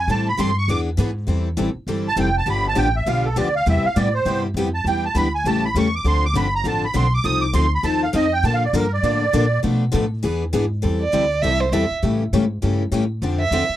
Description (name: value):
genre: acoustic string swing (jazz manouche)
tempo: 201 BPM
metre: 4/4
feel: swing 60% on 8ths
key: A minor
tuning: A4 = 441 Hz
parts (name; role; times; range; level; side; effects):
- musette accordion; melody; 0.0-9.6 s; A4 to Eb6; -21 LUFS; right 3 dB; none
- upright bass; bass; 0.0-13.7 s; F1 to B2; -22 LUFS; equal; none
- picked steel-string acoustic guitar; accompaniment; 0.1-13.6 s; B2 to A4; -23 LUFS; left 5 dB; none
- picked steel-string acoustic guitar; accompaniment; 0.1-13.6 s; B2 to B4; -27 LUFS; right 5 dB; none
- warm violin; second line; 11.0-13.8 s; C5 to E5; -20 LUFS; right 4 dB; slapback echo
room: little or no reverb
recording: dry, close 1970s-style studio recording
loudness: -18 LUFS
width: side -13 dB against mid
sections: 0.0-1.3 A section; 1.3-10.8 A section; 10.8-13.8 A section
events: accordion solo 0.0-10.8; violin solo 10.8-13.8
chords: 0.0 Am7; 0.7 E7; 1.3 Am7; 2.5 G7; 3.7 Cmaj7; 4.9 Em7; 5.5 A7; 6.1 Dm7; 7.3 F7; 8.4 Bbmaj7; 9.6 Bm7b5; 10.2 E7; 10.8 Am7; 12.0 A7; 13.2 Dm7